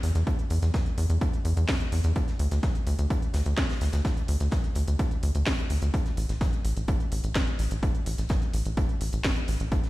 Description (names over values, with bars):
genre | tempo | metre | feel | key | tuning
melodic techno | 127 BPM | 4/4 | straight | unclear | A4 = 440 Hz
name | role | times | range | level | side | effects
tight sequencer bass | bass | 0.0-9.7 s | A1 to E2 | -25 LUFS | equal | sidechain pumping
huge arena drum kit | drums | 0.0-9.9 s | hi-hat, snare drum | -45 LUFS | left 1 dB | high-pass filter on hats, high-pass filter on snare, high-pass filter on room
techno drum kit | drums | 0.0-9.9 s | hi-hat, snare drum | -35 LUFS | equal | none
electronic kick drum | drums | 0.3-9.8 s | none | -27 LUFS | equal | none
room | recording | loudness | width
little or no reverb | played on a big sound system in a bare room, stone room reverb | -24 LUFS | side -18 dB against mid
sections
0.0-9.9 A section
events
none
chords
none